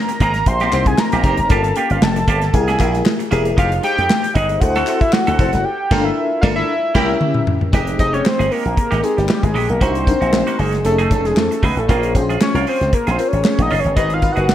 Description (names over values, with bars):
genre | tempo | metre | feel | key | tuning
polished 1980s jazz-funk pop | 116 BPM | 4/4 | swing 54% on 16ths | F minor | A4 = 444 Hz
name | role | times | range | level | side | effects
fat analog lead | melody | 0.0-14.5 s | G4 to C6 | -19 LUFS | equal | chorus
FM electric piano | accompaniment | 0.0-14.5 s | C4 to C5 | -23 LUFS | left 3 dB | tremolo, ensemble chorus
clean electric guitar | riff | 0.1-14.5 s | Ab3 to Bb4 | -24 LUFS | right 5 dB | lush chorus
modern studio drum kit | drums | 0.1-14.5 s | crash cymbal, hi-hat, kick drum, snare drum, toms | -18 LUFS | equal | gated reverb
slap bass with an envelope filter | bass | 0.2-14.5 s | E1 to F2 | -20 LUFS | equal | none
group handclap | percussion | 0.7-14.5 s | none | -32 LUFS | left 7 dB | none
clear horn section | second line | 6.9-7.1 s | Db4 to G4 | -26 LUFS | equal | digital delay
room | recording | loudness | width
light reverb, studio ambience | bright 1980s-style digital production | -14 LUFS | side -11 dB against mid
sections
0.0-7.7 A section; 7.7-14.5 B section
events
band accent 5.7-7.7; drum fill 6.7-7.7; analog synth lead solo 7.7-14.5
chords
0.0 Abmaj9; 1.5 Gm7b5; 2.5 C7b13; 3.6 Fm9; 4.6 D7; 5.7 Gm9; 6.7 C7b9; 7.7 Fm9; 9.8 Cm7b5; 10.8 F7alt; 11.9 Bbm7; 14.0 Abm7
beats
0.47 0.99 | 1.50 2.02 2.54 3.06 | 3.58 4.10 4.62 5.13 | 5.65 6.17 6.69 7.21 | 7.73 8.25 8.77 9.29 | 9.81 10.33 10.85 11.37 | 11.89 12.41 12.93 13.45 | 13.97 14.49